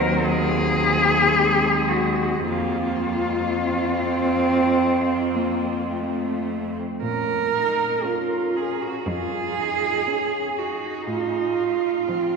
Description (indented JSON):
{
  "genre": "classical, lyrical piece for cello ensemble",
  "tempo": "51-61 BPM",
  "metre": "4/4",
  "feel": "rubato",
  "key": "Bb minor",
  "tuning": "A4 = 439 Hz",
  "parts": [
    { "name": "muted cello", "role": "melody", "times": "0.0-12.4 s", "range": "C4 to Bb4", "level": "-24 LUFS", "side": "left 3 dB", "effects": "none" },
    { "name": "muted cello", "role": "second line", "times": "0.0-12.4 s", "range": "C4 to Bb4", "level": "-25 LUFS", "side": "right 4 dB", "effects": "none" },
    { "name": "muted cello", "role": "accompaniment", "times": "0.0-12.4 s", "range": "F3 to Db4", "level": "-25 LUFS", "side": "right 1 dB", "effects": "none" },
    { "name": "muted cello", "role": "bass", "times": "0.0-11.9 s", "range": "Eb2 to Bb2", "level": "-29 LUFS", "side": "right 2 dB", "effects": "none" }
  ],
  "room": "wet cathedral reverb, RT60 4.6 s",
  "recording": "minimal, uncompressed stereo recording",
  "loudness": "-20 LUFS",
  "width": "side -5 dB against mid",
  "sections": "0.0-7.0 A section; 7.0-12.4 B section",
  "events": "none",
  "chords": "0.0 Cdim/Eb; 2.5 Fsus4; 4.8 F; 7.0 Bbm; 11.1 F7/A",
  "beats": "0.28 1.32 | 2.45 3.62 4.76 5.91 | 7.02 8.04 9.06 10.07 | 11.07 12.08"
}